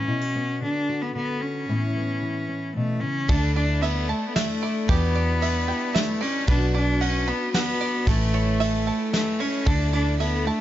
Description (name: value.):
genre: indie folk with a building arrangement.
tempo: 113 BPM.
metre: 3/4.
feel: straight.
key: D major.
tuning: A4 = 438 Hz.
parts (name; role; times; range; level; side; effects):
clear cello; melody; 0.0-10.6 s; A3 to D4; -26 LUFS; equal; none.
fingerpicked steel-string acoustic guitar; accompaniment; 0.0-4.9 s; A2 to F#4; -28 LUFS; left 2 dB; none.
picked twelve-string acoustic guitar; accompaniment; 3.3-10.6 s; E2 to F#4; -32 LUFS; left 5 dB; none.
bluegrass banjo; arpeggios; 3.3-10.6 s; G4 to B5; -32 LUFS; right 8 dB; none.
fingered electric bass; bass; 3.3-10.5 s; A1 to E2; -24 LUFS; equal; none.
soft brush drum kit; drums; 3.3-10.3 s; kick drum, ride cymbal, snare drum; -27 LUFS; equal; none.
room: small room ambience.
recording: nothing above 7.6 kHz.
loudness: -21 LUFS.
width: side -13 dB against mid.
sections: 0.0-3.3 A section; 3.3-10.6 A section.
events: none.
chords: 0.1 Bm; 1.7 Aadd9; 3.3 Dsus2; 4.9 Em7; 6.5 Bm; 8.1 A; 9.7 Dsus2.